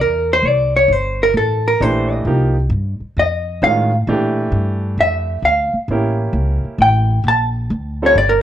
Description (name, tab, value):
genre	jazz, small-group swing and bop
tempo	132 BPM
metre	4/4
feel	swing 68% on 8ths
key	unclear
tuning	A4 = 439 Hz
part	vintage hollow-body jazz guitar	melody	0.0-8.4 s	A4 to A5	-15 LUFS	equal	none
part	upright bass	bass	0.0-8.4 s	G1 to Bb2	-18 LUFS	equal	none
part	clear baby grand piano	accompaniment	1.8-8.2 s	Eb3 to A4	-20 LUFS	right 2 dB	none
room	moderate small room reverb, RT60 0.6 s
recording	worn, warbling old tape, cassette tape, warbly pitch drift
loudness	-14 LUFS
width	side -11 dB against mid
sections	0.5-8.4 A section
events	hollow-body jazz guitar solo 0.0-8.4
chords	0.5 Gm69; 2.3 Cm7; 3.2 F7alt; 4.1 Bb6; 5.9 A7b9; 7.7 Dm7